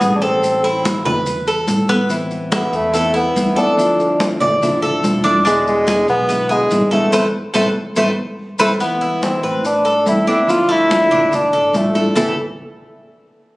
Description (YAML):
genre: latin, Cuban son and guajira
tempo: 143 BPM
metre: 4/4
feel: straight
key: A harmonic minor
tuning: A4 = 440 Hz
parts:
  - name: warm bassoon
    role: melody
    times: 0.0-12.4 s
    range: E3 to F4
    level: -16 LUFS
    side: equal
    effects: none
  - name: Cuban tres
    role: arpeggios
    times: 0.0-12.4 s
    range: A3 to D5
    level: -19 LUFS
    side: equal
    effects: none
  - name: upright bass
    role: bass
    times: 0.0-12.4 s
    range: E1 to A2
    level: -29 LUFS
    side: equal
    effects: none
  - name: congas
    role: percussion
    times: 0.0-12.3 s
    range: none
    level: -21 LUFS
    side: equal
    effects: none
  - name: maracas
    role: percussion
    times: 0.0-12.3 s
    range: none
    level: -31 LUFS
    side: left 1 dB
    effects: none
  - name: nylon-string guitar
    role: accompaniment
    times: 2.1-12.3 s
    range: A2 to E4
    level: -22 LUFS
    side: left 1 dB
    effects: none
room: light reverb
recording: recorded on a phone in the room, club reverb, compression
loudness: -13 LUFS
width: side -21 dB against mid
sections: 0.0-8.8 A section; 8.8-12.2 B section; 12.2-13.6 C section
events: band accent 7.1-8.8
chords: 0.4 Amadd9; 3.8 Dmadd9; 5.5 E7; 7.1 Amadd9; 10.5 Dmadd9; 12.2 A5